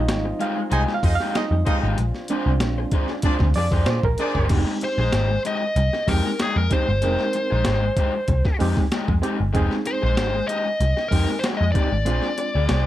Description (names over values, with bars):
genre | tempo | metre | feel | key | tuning
funk | 95 BPM | 4/4 | straight | F dorian | A4 = 440 Hz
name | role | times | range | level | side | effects
mellow French horn section | sustained chords | 0.0-4.5 s | F3 to F4 | -35 LUFS | left 1 dB | none
barky reed electric piano | stabs | 0.0-12.6 s | G3 to Ab5 | -26 LUFS | right 4 dB | overdrive, fast tremolo
vintage muted picked electric bass | bass | 0.0-12.9 s | F1 to Bb2 | -21 LUFS | equal | none
raw garage guitar | accompaniment | 0.1-12.9 s | Ab3 to D5 | -28 LUFS | left 4 dB | overdrive
breakbeat sampler-style drum kit | drums | 0.1-12.8 s | crash cymbal, hi-hat, kick drum, snare drum | -24 LUFS | equal | none
mellow horn section | second line | 0.7-4.6 s | D4 to Eb5 | -29 LUFS | equal | none
nasal lead guitar with a parked wah | melody | 4.8-12.9 s | Ab4 to Eb5 | -24 LUFS | left 1 dB | overdrive, plate reverb
room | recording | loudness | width
light reverb | dark, warm production | -19 LUFS | side -14 dB against mid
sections
0.0-4.5 A section; 4.5-12.9 B section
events
reed electric piano solo 0.0-4.5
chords
0.0 Fm9; 2.0 Bb9; 4.5 Fm9; 12.1 Bb9